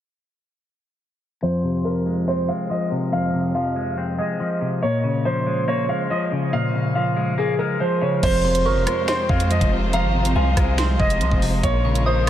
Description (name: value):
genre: hip hop, drill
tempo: 141 BPM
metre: 4/4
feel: half-time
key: F minor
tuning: A4 = 440 Hz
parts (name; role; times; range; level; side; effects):
- dark concert grand piano; melody; 1.4-12.3 s; Ab4 to F5; -23 LUFS; right 1 dB; lush chorus, low-pass filter, diffuse ambient delay
- semi-hollow electric guitar; accompaniment; 1.4-12.3 s; F2 to C4; -23 LUFS; left 2 dB; lush chorus, low-pass filter
- dark studio string section; sustained chords; 8.2-12.3 s; Ab3 to C5; -29 LUFS; right 1 dB; none
- long sustained 808-style bass; bass; 8.2-12.3 s; F1 to F2; -21 LUFS; equal; none
- drill drum kit; drums; 8.2-12.3 s; crash cymbal, finger snaps, hi-hat, kick drum, rim click, snare drum; -24 LUFS; equal; none
- soft synth bell; second line; 8.4-12.3 s; Ab5 to Eb6; -30 LUFS; equal; chorus, phaser, diffuse ambient delay
room: moderate huge ambient reverb, RT60 8.2 s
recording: dreamy mix soaked in reverb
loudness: -18 LUFS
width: side -11 dB against mid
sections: 1.4-8.2 A section; 8.2-12.3 B section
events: filter sweep 1.4-8.2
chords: 1.4 Fm; 4.8 Bbm7; 8.2 Fm; 11.6 Bbm7